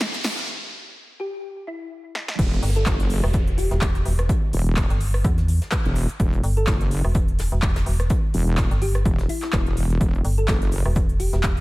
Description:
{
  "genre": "bass house",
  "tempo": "126 BPM",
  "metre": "4/4",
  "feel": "swing 56% on 16ths",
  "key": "E minor",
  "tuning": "A4 = 439 Hz",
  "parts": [
    { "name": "big-room dance drum kit", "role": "drums", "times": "0.0-11.6 s", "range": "crash cymbal, handclaps, hi-hat, rim click, snare drum", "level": "-30 LUFS", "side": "equal", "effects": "none" },
    { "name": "tambourine", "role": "percussion", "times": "0.0-0.5 s", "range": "none", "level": "-39 LUFS", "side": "right 2 dB", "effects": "none" },
    { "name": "riser and downlifter", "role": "sound effects", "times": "0.0-6.2 s", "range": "none", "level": "-33 LUFS", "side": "right 1 dB", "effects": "none" },
    { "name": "thumb-piano-like synth pluck", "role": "melody", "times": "1.2-11.6 s", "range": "E4 to A4", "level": "-31 LUFS", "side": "left 1 dB", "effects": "ensemble chorus, analog delay" },
    { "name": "wobble bass", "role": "bass", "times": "2.4-10.8 s", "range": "E1 to F#1", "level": "-22 LUFS", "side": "equal", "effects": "chorus, tube saturation, sidechain pumping" },
    { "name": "electronic kick drum", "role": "drums", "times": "2.4-11.5 s", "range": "none", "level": "-22 LUFS", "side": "equal", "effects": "overdrive" },
    { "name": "soft brush drum kit", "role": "drums", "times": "2.4-11.6 s", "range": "hi-hat, snare drum", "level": "-41 LUFS", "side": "left 2 dB", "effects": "none" },
    { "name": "metallic FM bass", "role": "bass", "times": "2.6-11.6 s", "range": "E1 to E2", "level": "-21 LUFS", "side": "equal", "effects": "overdrive, sidechain pumping" }
  ],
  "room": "little or no reverb",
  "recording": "high-pass filter",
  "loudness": "-19 LUFS",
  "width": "side -20 dB against mid",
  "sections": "0.0-2.4 A section; 2.4-11.6 B section",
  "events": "build-up 0.0-2.4; drum fill 0.0-0.5, 2.1; riser 0.0-0.5; break 0.5-2.4; drop 2.4-11.6",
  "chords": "0.0 Em"
}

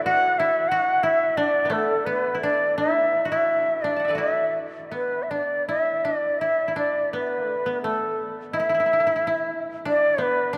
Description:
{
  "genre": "japanese traditional, Japanese chamber music",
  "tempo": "79-92 BPM",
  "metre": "4/4",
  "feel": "rubato",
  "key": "E suspended pentatonic",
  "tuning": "A4 = 440 Hz",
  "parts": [
    { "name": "reedy shakuhachi", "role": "melody", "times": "0.0-10.6 s", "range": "A4 to F#5", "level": "-24 LUFS", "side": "equal", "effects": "none" },
    { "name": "koto", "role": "second line", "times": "0.0-10.6 s", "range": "A3 to A5", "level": "-31 LUFS", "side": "equal", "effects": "none" }
  ],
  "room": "wet cathedral reverb, RT60 5.1 s",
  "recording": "dark, warm production",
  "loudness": "-23 LUFS",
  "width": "mono",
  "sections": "0.0-10.6 A section",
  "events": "none",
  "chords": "none"
}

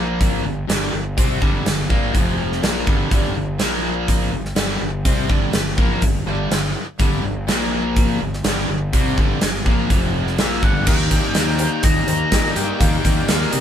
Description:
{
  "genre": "classic rock",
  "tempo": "124 BPM",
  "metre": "4/4",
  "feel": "straight",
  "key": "unclear",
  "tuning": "A4 = 440 Hz",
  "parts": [
    { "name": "crunchy overdriven guitar", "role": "riff", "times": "0.0-13.6 s", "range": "F2 to G4", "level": "-24 LUFS", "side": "left 5 dB", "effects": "none" },
    { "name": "overdriven electric guitar", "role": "riff", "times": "0.0-13.6 s", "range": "F2 to Eb4", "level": "-26 LUFS", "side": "right 6 dB", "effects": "none" },
    { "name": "fuzz fingered electric bass", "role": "bass", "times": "0.0-13.6 s", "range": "F1 to C3", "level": "-24 LUFS", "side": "equal", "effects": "overdrive" },
    { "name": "gated 80s drum kit", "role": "drums", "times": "0.2-13.6 s", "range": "crash cymbal, hi-hat, kick drum, snare drum", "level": "-19 LUFS", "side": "equal", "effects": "none" },
    { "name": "octave-fuzz lead guitar", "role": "melody", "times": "10.4-13.6 s", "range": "Eb5 to Bb5", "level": "-25 LUFS", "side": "left 2 dB", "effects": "distortion" },
    { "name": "tack piano", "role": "accompaniment", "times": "10.9-13.6 s", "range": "G4 to F5", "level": "-31 LUFS", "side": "left 4 dB", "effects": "none" }
  ],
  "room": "light reverb",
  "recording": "band playing live in one room",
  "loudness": "-16 LUFS",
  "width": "side -9 dB against mid",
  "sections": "0.0-10.9 A section; 10.9-13.6 B section",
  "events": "none",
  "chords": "0.4 G5; 2.1 F5; 2.6 G5; 3.6 Bb5; 4.3 G5; 7.5 Bb5; 8.2 G5; 9.9 F5; 10.4 G5; 10.9 Eb"
}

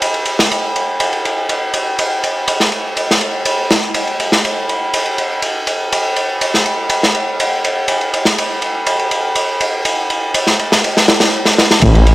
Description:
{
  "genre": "breakbeat, breaks",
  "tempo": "122 BPM",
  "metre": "4/4",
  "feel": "straight",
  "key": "unclear",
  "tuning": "A4 = 444 Hz",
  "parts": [
    { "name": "crunchy breakbeat drum kit", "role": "drums", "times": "0.0-12.1 s", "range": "kick drum, ride cymbal, snare drum", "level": "-13 LUFS", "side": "equal", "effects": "high-pass filter on kick, high-pass filter on cymbals, high-pass filter on snare, high-pass filter on room" },
    { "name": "detuned saw bass", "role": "bass", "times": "11.8-12.1 s", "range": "A1", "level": "-7 LUFS", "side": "equal", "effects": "none" }
  ],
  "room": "light reverb",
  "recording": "vinyl crackle",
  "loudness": "-13 LUFS",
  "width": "side -18 dB against mid",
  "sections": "0.0-11.8 A section",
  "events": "drum fill 11.4-11.8",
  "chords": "none"
}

